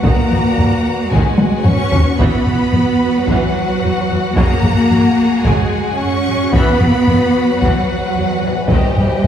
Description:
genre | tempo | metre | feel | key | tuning
cinematic, epic orchestral film score | 111 BPM | 4/4 | straight | unclear | A4 = 440 Hz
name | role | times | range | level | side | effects
rich symphonic violin section | melody | 0.0-9.3 s | F#5 to C#6 | -23 LUFS | left 3 dB | none
rich symphonic violin section | second line | 0.0-9.3 s | G#4 to F#5 | -24 LUFS | left 2 dB | none
bright studio viola section | accompaniment | 0.0-9.3 s | C#3 to G4 | -24 LUFS | equal | none
mellow French horn section | sustained chords | 0.0-9.3 s | A#2 to C#4 | -19 LUFS | left 1 dB | none
rich symphonic cello section | bass | 0.0-9.3 s | F#3 to C#4 | -20 LUFS | right 2 dB | none
rich symphonic double bass section | bass | 0.0-9.3 s | D#2 to F#2 | -22 LUFS | right 2 dB | none
taiko ensemble | drums | 0.0-9.3 s | none | -16 LUFS | equal | none
room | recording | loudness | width
wet concert hall reverb, RT60 2.1 s | heard from further back in the room | -12 LUFS | side -9 dB against mid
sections
0.0-9.3 A section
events
drum fill 1.4-2.2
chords
0.0 B/D#; 2.2 Esus2; 4.4 F#sus2; 6.5 Esus2; 8.7 D#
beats
| 0.04 0.58 1.12 1.66 | 2.20 2.74 3.28 3.82 | 4.36 4.91 5.45 5.99 | 6.53 7.07 7.61 8.15 | 8.69 9.23

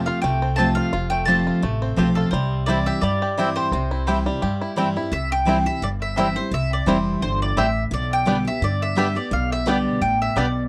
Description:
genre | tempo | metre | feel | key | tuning
bluegrass | 172 BPM | 4/4 | swing 54% on 8ths | C major | A4 = 440 Hz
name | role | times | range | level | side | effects
bluegrass banjo | melody | 0.0-10.5 s | G3 to G4 | -30 LUFS | equal | none
picked steel-string acoustic guitar | accompaniment | 0.0-10.7 s | F2 to G4 | -26 LUFS | equal | none
upright bass | bass | 0.0-10.7 s | F1 to G2 | -28 LUFS | equal | none
mandolin | melody | 0.1-10.6 s | A4 to A5 | -26 LUFS | equal | none
mandolin | stabs | 0.6-10.5 s | B3 to A5 | -30 LUFS | equal | tape echo
room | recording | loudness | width
light reverb | dry, close 1970s-style studio recording | -21 LUFS | mono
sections
0.0-5.1 A section; 5.1-10.7 B section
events
none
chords
0.0 F; 2.3 C; 7.9 G/B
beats
0.24 0.59 | 0.94 1.28 1.63 1.98 | 2.33 2.68 3.03 3.38 | 3.73 4.08 4.43 4.78 | 5.13 5.48 5.83 6.17 | 6.52 6.87 7.22 7.57 | 7.92 8.27 8.62 8.97 | 9.32 9.67 10.02 10.37

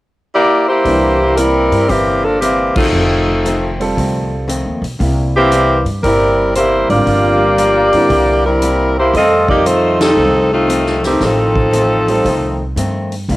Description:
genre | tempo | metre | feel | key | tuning
jazz, big band swing | 116 BPM | 4/4 | swing 67% on 8ths | unclear | A4 = 442 Hz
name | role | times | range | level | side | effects
bright saxophone section | melody | 0.3-12.8 s | Eb3 to Eb5 | -12 LUFS | equal | cassette tape
warm grand piano | accompaniment | 0.8-12.2 s | D3 to A4 | -21 LUFS | right 2 dB | cassette tape
archtop guitar, miked and amplified | accompaniment | 0.9-13.4 s | F2 to E4 | -24 LUFS | left 1 dB | cassette tape
upright bass | bass | 0.9-13.4 s | F1 to G2 | -19 LUFS | equal | none
swinging big-band drum kit | drums | 0.9-13.4 s | crash cymbal, hi-hat, kick drum, ride cymbal, snare drum | -22 LUFS | equal | cassette tape
room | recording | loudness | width
moderate small room reverb, RT60 0.5 s | home recording on cassette | -11 LUFS | side -17 dB against mid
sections
0.9-13.4 A section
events
band accent 2.7, 9.9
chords
0.0 Bb6; 0.9 C7; 2.9 F7; 5.0 C7; 7.1 Gm7; 8.1 C7; 9.1 F7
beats
0.34 | 0.86 1.38 1.89 2.41 | 2.93 3.44 3.96 4.48 | 5.00 5.51 6.03 6.55 | 7.07 7.58 8.10 8.62 | 9.14 9.66 10.17 10.69 | 11.21 11.73 12.25 12.77 | 13.29

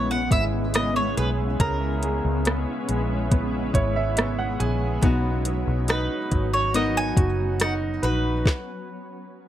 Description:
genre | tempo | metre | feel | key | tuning
pop ballad | 70 BPM | 4/4 | straight | B major | A4 = 441 Hz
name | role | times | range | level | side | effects
mandolin | melody | 0.0-9.5 s | A#4 to G#5 | -28 LUFS | right 1 dB | none
bright concert grand piano | accompaniment | 0.0-8.5 s | C#3 to G#5 | -28 LUFS | right 4 dB | none
shimmering ambient pad | sustained chords | 0.0-8.4 s | C#3 to E4 | -31 LUFS | left 2 dB | chorus, built-in reverb
vintage muted fingered electric bass | bass | 0.0-8.4 s | F#1 to C#2 | -26 LUFS | equal | none
smooth R&B drum kit | drums | 0.3-8.7 s | hi-hat, kick drum, rim click, snare drum | -22 LUFS | equal | none
nylon-string guitar | arpeggios | 5.0-9.0 s | B3 to A#4 | -30 LUFS | left 3 dB | none
room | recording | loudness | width
light reverb | none | -21 LUFS | side -12 dB against mid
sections
0.0-9.5 A section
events
grand piano fill 3.3-5.0; stop 8.5-9.5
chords
0.0 C#m7; 5.0 Bmaj7; 8.5 N.C.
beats
0.75 | 1.60 2.46 3.32 4.17 | 5.03 5.89 6.75 7.60 | 8.46 9.32

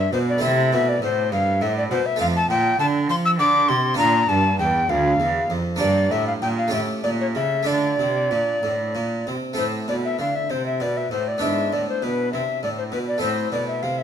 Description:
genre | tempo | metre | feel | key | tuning
classical, baroque-style sonata movement with continuo | 66 BPM (dotted quarters) | 6/8 | rubato | D minor, A minor from 9.6 s | A4 = 435 Hz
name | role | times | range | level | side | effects
mellow alto recorder | melody | 0.0-14.0 s | B4 to E6 | -22 LUFS | left 2 dB | none
harpsichord | accompaniment | 0.0-14.0 s | D2 to G4 | -26 LUFS | right 2 dB | none
warm cello | bass | 0.0-14.0 s | D2 to F3 | -25 LUFS | right 3 dB | none
room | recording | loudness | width
moderate large studio reverb, RT60 1.4 s | none | -19 LUFS | side -8 dB against mid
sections
0.0-9.6 A section; 9.6-14.0 A section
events
none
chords
0.0 Am; 2.2 F; 4.0 Bb; 5.8 Gm; 6.7 A7; 7.7 Dm; 9.6 Am; 11.4 E7/G#; 13.2 Am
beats
| 0.43 1.32 | 2.20 3.10 | 3.99 4.90 | 5.80 6.73 | 7.67 8.63 | 9.58 10.50 | 11.42 12.33 | 13.22

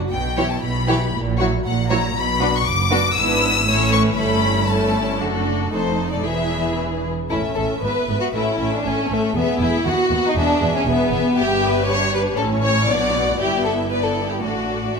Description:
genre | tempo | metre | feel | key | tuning
quick classical-period movement for string orchestra | 118 BPM | 2/4 | straight | B minor, A major from 3.2 s | A4 = 439 Hz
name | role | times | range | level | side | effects
rich chamber double bass section | bass | 0.0-15.0 s | E1 to D#2 | -26 LUFS | right 3 dB | none
rich studio cello section | bass | 0.0-15.0 s | D#2 to B2 | -26 LUFS | right 2 dB | none
rich chamber violin section | melody | 0.1-15.0 s | B4 to E6 | -24 LUFS | left 5 dB | none
rich chamber violin section | second line | 0.4-14.9 s | A3 to D5 | -22 LUFS | left 2 dB | none
warm chamber viola section | accompaniment | 0.4-15.0 s | E3 to B4 | -24 LUFS | right 1 dB | none
room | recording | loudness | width
moderate scoring stage reverb, RT60 2.2 s | none | -17 LUFS | side -5 dB against mid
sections
0.0-7.3 A section; 7.3-15.0 B section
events
none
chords
0.1 C#m7b5/B; 1.1 F#7/A#; 2.2 Bm; 3.2 E7/G#; 3.7 A; 4.2 A7/G; 5.2 D/F#; 5.7 F7; 6.2 E; 7.3 A; 7.8 E/G#; 8.3 A; 9.4 E; 9.9 B/D#; 10.4 E; 11.4 Em/G; 12.4 A; 12.9 Bm; 13.4 Em7/G; 14.4 D/A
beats
| 0.11 0.62 | 1.14 1.65 | 2.15 2.65 | 3.16 3.66 | 4.17 4.68 | 5.20 5.71 | 6.24 6.78 | 7.31 7.82 | 8.34 8.85 | 9.35 9.86 | 10.37 10.87 | 11.38 11.88 | 12.38 12.89 | 13.39 13.90 | 14.43 14.96

